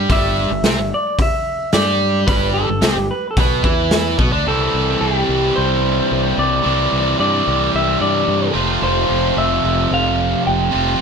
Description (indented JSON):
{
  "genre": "indie rock",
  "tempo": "110 BPM",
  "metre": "4/4",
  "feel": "straight",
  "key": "unclear",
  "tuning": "A4 = 440 Hz",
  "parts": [
    { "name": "sludgy distorted guitar", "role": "riff", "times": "0.0-11.0 s", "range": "F2 to G4", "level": "-18 LUFS", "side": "right 1 dB", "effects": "overdrive" },
    { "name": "growling fingered electric bass", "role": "bass", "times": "0.0-11.0 s", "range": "F1 to G2", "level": "-22 LUFS", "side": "equal", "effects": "overdrive" },
    { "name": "electric guitar through a small old amp", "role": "melody", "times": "0.1-11.0 s", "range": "G4 to G5", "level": "-19 LUFS", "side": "equal", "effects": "slapback echo" },
    { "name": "raw garage drum kit", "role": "drums", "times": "0.1-4.3 s", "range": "hi-hat, kick drum, snare drum", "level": "-19 LUFS", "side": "equal", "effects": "none" }
  ],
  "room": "light reverb",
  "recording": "none",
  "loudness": "-14 LUFS",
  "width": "side -6 dB against mid",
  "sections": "0.0-4.5 A section; 4.5-11.0 B section",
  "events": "none",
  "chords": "0.0 G; 4.5 Cadd9; 8.6 F",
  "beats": "| 0.10 0.65 1.19 1.74 | 2.28 2.83 3.38 3.92 | 4.47 5.01 5.56 6.10 | 6.65 7.19 7.74 8.28 | 8.83 9.37 9.92 10.46 | 11.01"
}